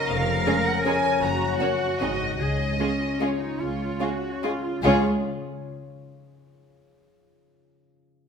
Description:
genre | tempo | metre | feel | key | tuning
classical, orchestral ballroom waltz | 139-171 BPM | 3/4 | rubato | Db major | A4 = 440 Hz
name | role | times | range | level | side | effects
rich studio violin section | melody | 0.0-5.1 s | Db5 to Bb5 | -29 LUFS | equal | none
concert harp | arpeggios | 0.0-6.1 s | F2 to F5 | -29 LUFS | left 7 dB | none
warm studio cello section | bass | 0.0-5.1 s | Db2 to Bb4 | -28 LUFS | right 3 dB | none
dark symphonic double bass section | bass | 0.1-5.0 s | F1 to Db2 | -30 LUFS | right 3 dB | none
warm studio violin section | second line | 0.5-5.0 s | Eb4 to Db5 | -31 LUFS | left 1 dB | none
dark studio viola section | accompaniment | 0.5-5.1 s | Ab3 to Db4 | -29 LUFS | right 1 dB | none
timpani | percussion | 4.8-5.0 s | none | barely audible | none | none
room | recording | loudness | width
wet recital hall reverb, RT60 1.6 s | minimal, uncompressed stereo recording | -22 LUFS | side -6 dB against mid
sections
0.0-4.8 A section; 4.8-6.0 B section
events
none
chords
0.1 Db/F; 1.2 Gb; 2.0 Ab; 2.4 Db

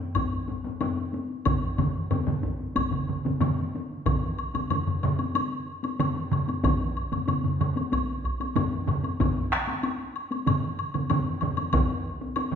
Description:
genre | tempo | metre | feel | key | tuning
japanese traditional, taiko drum ensemble | 93 BPM | 4/4 | straight | none | none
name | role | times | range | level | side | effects
taiko ensemble | percussion | 0.1-12.6 s | none | -31 LUFS | left 4 dB | none
woodblock | percussion | 0.1-12.5 s | none | -32 LUFS | left 2 dB | none
solo taiko drums | percussion | 0.2-11.9 s | none | -31 LUFS | right 1 dB | none
taiko ensemble | percussion | 0.2-12.5 s | none | -31 LUFS | left 3 dB | none
taiko ensemble | percussion | 1.5-12.6 s | none | -30 LUFS | right 5 dB | none
room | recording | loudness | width
wet recital hall reverb, RT60 1.6 s | heard from further back in the room | -25 LUFS | side -8 dB against mid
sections
0.0-4.1 A section; 4.1-12.6 B section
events
speeding up 0.0-12.6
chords
none

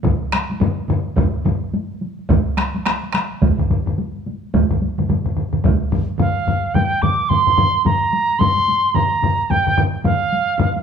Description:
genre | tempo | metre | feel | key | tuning
japanese traditional, taiko drum ensemble | 108 BPM | 4/4 | swing 60% on 16ths | C suspended pentatonic | A4 = 440 Hz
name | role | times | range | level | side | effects
solo taiko drums | percussion | 0.0-10.7 s | none | -21 LUFS | left 5 dB | none
solo taiko drums | percussion | 0.0-5.8 s | none | -20 LUFS | right 3 dB | none
taiko ensemble | percussion | 0.0-10.8 s | none | -25 LUFS | left 1 dB | none
taiko ensemble | percussion | 0.0-10.7 s | none | -25 LUFS | right 6 dB | none
wooden piccolo | melody | 6.2-10.8 s | F5 to D6 | -17 LUFS | right 3 dB | none
room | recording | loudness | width
wet large studio reverb, RT60 1.2 s | band playing live in one room | -16 LUFS | side -7 dB against mid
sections
0.0-6.8 A section; 6.8-10.8 B section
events
speeding up 0.0-10.8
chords
none

